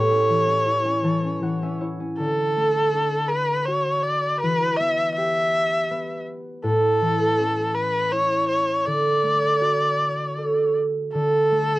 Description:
children's music, lullaby; 81 BPM; 3/4; straight; D major; A4 = 440 Hz
warm erhu; melody; 0.0-11.8 s; A4 to E5; -22 LUFS; left 1 dB; cassette tape
concert harp; accompaniment; 0.0-11.8 s; A2 to A5; -23 LUFS; right 1 dB; cassette tape
light reverb; home recording on cassette; -19 LUFS; side -18 dB against mid
0.0-2.2 A section; 2.2-11.1 B section
harp fill 0.7-2.2
0.0 A; 2.2 D; 4.4 Em; 6.6 A; 8.9 D
0.68 1.43 | 2.19 2.94 3.68 | 4.42 5.16 5.90 | 6.64 7.38 8.12 | 8.86 9.61 10.38 | 11.14

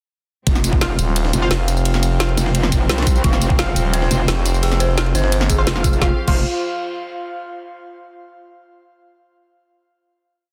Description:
dark technical drum and bass; 173 BPM; 4/4; straight; A4 = 440 Hz
clear studio string section; sustained chords; 0.5-6.2 s; C3 to F5; -30 LUFS; equal; sidechain pumping
metallic wobble bass; bass; 0.5-6.4 s; F1 to C2; -22 LUFS; equal; distortion, chorus, overdrive
breakbeat sampler-style drum kit; drums; 0.5-5.9 s; hi-hat, ride cymbal, snare drum; -32 LUFS; equal
drum and bass drum kit; drums; 0.5-6.3 s; crash cymbal, hi-hat, snare drum, tambourine; -25 LUFS; equal
electronic kick drum; drums; 0.5-6.3 s; -20 LUFS; equal; overdrive
airy breathy pad; texture; 0.5-7.4 s; F4 to G5; -31 LUFS; equal; chorus, sidechain pumping
orchestra-hit-like synth stab; stabs; 0.8-6.4 s; F4 to F5; -30 LUFS; equal; built-in reverb, cassette tape, digital delay
growling FM bass; bass; 1.0-5.7 s; Eb1 to G1; -20 LUFS; equal; tube saturation
dark detuned synth bell; arpeggios; 3.2-6.4 s; F4 to F5; -29 LUFS; equal; chorus, phaser, sidechain pumping, digital delay
digital ambience; dense, heavily limited modern master; -18 LUFS; mono
0.5-6.0 drop; 6.0-7.4 final chord
drop 0.5-6.0
0.5 F5
| 0.47 0.81 1.16 1.51 | 1.85 2.20 2.55 2.90 | 3.24 3.59 3.94 4.28 | 4.63 4.98 5.32 5.67 | 6.02 6.36 6.71 7.06

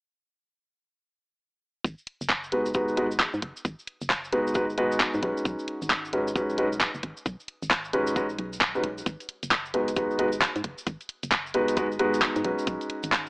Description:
UK garage, two-step garage; 133 BPM; 4/4; swing 62% on 16ths; G# minor; A4 = 440 Hz
organ-like FM bass; bass; 1.8-13.3 s; F#1 to G#2; -38 LUFS; equal
electronic kick drum; drums; 1.8-13.2 s; -30 LUFS; equal; overdrive
cabasa; percussion; 1.9-13.3 s; -43 LUFS; equal
garage drum kit; drums; 2.1-13.2 s; handclaps, hi-hat; -25 LUFS; equal; overdrive
warm concert grand piano; stabs; 2.5-13.3 s; G#3 to B4; -26 LUFS; equal; digital delay
light reverb, small room ambience; AM radio sound; -24 LUFS; side -30 dB against mid
1.8-13.3 A section
1.8 G#m7; 5.2 B69; 9.1 G#m7; 12.4 B69
| 1.84 2.30 2.75 3.20 | 3.65 4.10 4.55 5.00 | 5.45 5.91 6.36 6.81 | 7.26 7.71 8.16 8.61 | 9.06 9.51 9.96 10.42 | 10.87 11.32 11.77 12.22 | 12.67 13.12

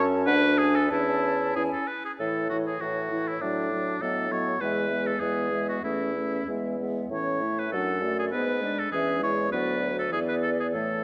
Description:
quick classical-period movement for wind quintet; 92-102 BPM; 2/4; rubato; A major; A4 = 440 Hz
mellow silver concert flute; melody; 0.0-11.0 s; B4 to A5; -38 LUFS; equal
warm oboe; second line; 0.0-11.0 s; D4 to C#5; -31 LUFS; equal
warm French horn; accompaniment; 0.0-11.0 s; E3 to D4; -35 LUFS; equal
warm clarinet; accompaniment; 0.0-11.0 s; A3 to F#4; -36 LUFS; equal
mellow bassoon; bass; 0.0-11.0 s; D2 to A2; -32 LUFS; equal
moderate scoring stage reverb, RT60 2.0 s; -27 LUFS; mono
0.0-2.2 A section; 2.2-11.0 B section
0.3 D5; 0.9 A/E; 2.2 A; 3.4 D/A; 4.0 B7/A; 4.6 E; 5.8 A/E; 6.5 E; 7.1 A; 7.7 D/F#; 8.3 G#dim; 8.9 C#m/E; 9.5 Bm/D; 10.1 E5
0.27 | 0.91 1.55 | 2.19 2.81 | 3.42 4.01 | 4.60 5.21 | 5.83 6.47 | 7.11 7.72 | 8.33 8.92 | 9.51 10.11 | 10.74

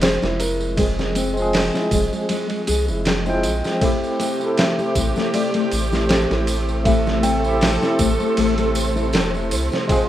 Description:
trip hop; 79 BPM; 4/4; swing 54% on 16ths; A phrygian; A4 = 444 Hz
felt-muted upright piano; melody; 0.0-9.5 s; Ab4 to G5; -27 LUFS; right 1 dB; tape echo
barky tine electric piano; accompaniment; 0.0-10.1 s; F3 to G5; -24 LUFS; equal; overdrive, tremolo, tape echo
nylon-string guitar; arpeggios; 0.0-10.1 s; Ab3 to A4; -25 LUFS; left 3 dB; tape echo
soft dub sub bass; bass; 0.0-9.7 s; E1 to C2; -24 LUFS; equal; tube saturation
trip hop sampler-style drum kit; drums; 0.0-10.1 s; hi-hat, kick drum, ride cymbal, snare drum; -23 LUFS; equal
tambourine; percussion; 0.0-10.1 s; -33 LUFS; right 4 dB
rich studio string section; sustained chords; 3.8-10.1 s; C3 to A4; -25 LUFS; right 2 dB
flickering grainy texture; texture; 4.8-10.1 s; C5; -30 LUFS; right 1 dB; built-in reverb
light reverb, studio reverb; rough home demo mix; -17 LUFS; side -12 dB against mid
0.0-10.1 A section
0.0 Fm; 3.8 Am7
0.02 | 0.78 1.54 2.30 3.06 | 3.82 4.58 5.34 6.10 | 6.86 7.62 8.37 9.13 | 9.89

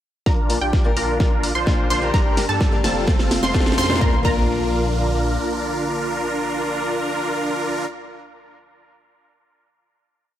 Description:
EDM, festival progressive house; 128 BPM; 4/4; straight; Bb major; A4 = 440 Hz
lush unison pad; sustained chords; 0.3-7.6 s; C3 to G4; -31 LUFS; left 1 dB; chorus, sidechain pumping
wide unison pluck; arpeggios; 0.3-7.9 s; G5 to C6; -26 LUFS; right 1 dB; sidechain pumping, dub echo
dense compressed supersaw; riff; 0.3-7.9 s; C4 to C5; -23 LUFS; right 1 dB; sidechain pumping, low-pass filter, dub echo
wide detuned saw bass; bass; 0.3-5.4 s; F1 to G2; -27 LUFS; equal; chorus, sidechain pumping
big-room dance drum kit; drums; 0.3-4.0 s; hi-hat, snare drum; -25 LUFS; equal
electronic kick drum; drums; 0.3-4.4 s; -19 LUFS; equal
riser and impact; sound effects; 2.1-7.7 s; -32 LUFS; equal
picked acoustic archtop guitar; accompaniment; 0.5-7.9 s; G2 to Bb4; -27 LUFS; left 4 dB; vintage 12-bit sampler grit, sidechain pumping, dub echo
light reverb; -18 LUFS; side -11 dB against mid
0.3-4.0 build; 4.0-7.8 final chord
build-up 0.3-4.0; drum fill 0.3-4.0; filter sweep on supersaw synth 0.3-4.0; filter sweep on analog synth pad 0.3-4.0
0.3 Bb; 2.1 Gm; 3.1 F; 4.0 Bb
| 0.26 0.73 1.20 1.67 | 2.14 2.61 3.08 3.54 | 4.01 4.48 4.95 5.42 | 5.89 6.36 6.83 7.29

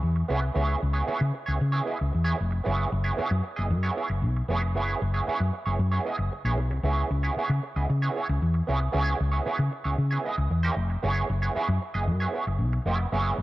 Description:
disco; 115 BPM; 4/4; straight; A4 = 441 Hz
hollow-body short-scale fingered electric bass; bass; 0.0-13.4 s; E#1 to C#3; -25 LUFS; left 1 dB
semi-hollow electric guitar; accompaniment; 0.2-13.4 s; B3 to D#5; -29 LUFS; right 3 dB; wah, spring reverb
little or no reverb; dry, close 1970s-style studio recording; -24 LUFS; side -17 dB against mid
0.0-13.4 A section
0.0 C#m7; 2.7 F#9sus4; 6.8 C#m7; 11.0 F#9sus4
0.04 | 0.56 1.08 1.61 2.13 | 2.66 3.18 3.70 4.23 | 4.75 5.27 5.80 6.32 | 6.84 7.36 7.89 8.41 | 8.93 9.46 9.98 10.50 | 11.02 11.54 12.07 12.59 | 13.11

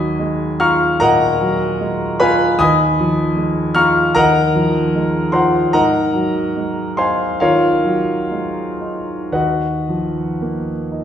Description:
classical, impressionist solo piano; 55-77 BPM; 4/4; rubato; Eb minor; A4 = 441 Hz
clear concert grand piano; solo; 0.0-11.0 s; Eb2 to F6; -14 LUFS; equal
wet recital hall reverb, RT60 1.3 s; heard from further back in the room; -14 LUFS; side -9 dB against mid
0.0-11.0 A section
0.0 Ebm11; 2.6 Dbadd9/Eb; 4.2 Fm7/Eb; 5.7 Ab9; 9.3 Ebmadd9
0.20 1.00 1.78 | 2.58 3.37 4.16 4.94 | 5.73 6.56 7.39 8.29 | 9.32 10.39

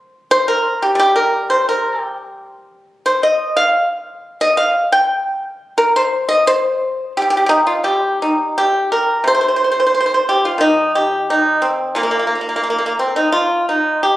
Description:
chinese traditional, Chinese solo plucked strings; 87 BPM; 2/4; rubato; G jue mode; A4 = 440 Hz
pipa; solo; 0.3-14.2 s; Bb2 to G5; -14 LUFS; equal
moderate recital hall reverb, RT60 1.6 s; recorded on a phone in the room, club reverb; -14 LUFS; side -15 dB against mid
0.0-7.8 A section; 7.8-14.2 B section
0.28 | 0.96 1.66 | 2.36 3.05 | 3.74 4.41 | 5.07 5.74 | 6.44 7.14 | 7.85 8.55 | 9.25 9.93 | 10.60 11.27 | 11.95 12.64 | 13.33 14.02

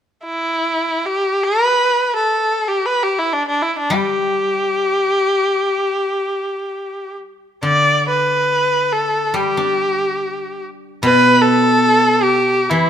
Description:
chinese traditional, Chinese chamber ensemble; free time; G gong mode; A4 = 440 Hz
clear erhu; melody; 0.2-12.9 s; D4 to D5; -15 LUFS; equal
guzheng; accompaniment; 3.9-12.9 s; B2 to D4; -20 LUFS; right 1 dB
light reverb; minimal, uncompressed stereo recording; -14 LUFS; side -9 dB against mid
0.0-7.6 A section; 7.6-12.9 B section
free time

